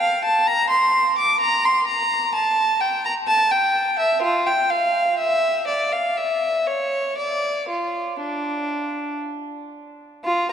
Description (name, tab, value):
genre	classical, baroque-style suite movement for unaccompanied violin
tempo	56-65 BPM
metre	3/4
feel	rubato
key	D minor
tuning	A4 = 440 Hz
part	rich violin	solo	0.0-10.5 s	D4 to D6	-18 LUFS	equal	none
room	wet cathedral reverb, RT60 4.4 s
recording	dark, warm production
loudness	-18 LUFS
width	side -8 dB against mid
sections	0.0-10.3 A section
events	none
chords	none